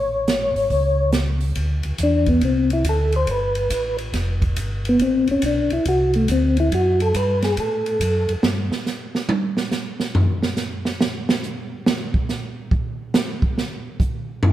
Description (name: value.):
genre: soul jazz organ trio.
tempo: 140 BPM.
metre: 4/4.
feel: swing 66% on 8ths.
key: unclear.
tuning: A4 = 439 Hz.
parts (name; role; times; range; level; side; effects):
percussive tonewheel organ; melody; 0.0-8.3 s; A3 to C#5; -19 LUFS; left 1 dB; slow rotary speaker, chorus vibrato.
mellow tonewheel organ; bass; 0.0-8.7 s; F1 to A2; -22 LUFS; equal; overdrive, chorus vibrato, slow rotary speaker.
swinging big-band drum kit; drums; 0.3-14.5 s; hi-hat, kick drum, ride cymbal, snare drum, toms; -23 LUFS; right 2 dB; none.
room: moderate echo chamber reverb, RT60 1.3 s.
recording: heard from further back in the room.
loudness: -18 LUFS.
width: side -13 dB against mid.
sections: 0.0-1.6 A section; 1.6-14.5 B section.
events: tonewheel organ solo 1.6-14.5; drum solo 8.4-14.5.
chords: 0.0 A; 1.6 Dsus2; 3.3 G9; 5.0 D7; 8.4 N.C..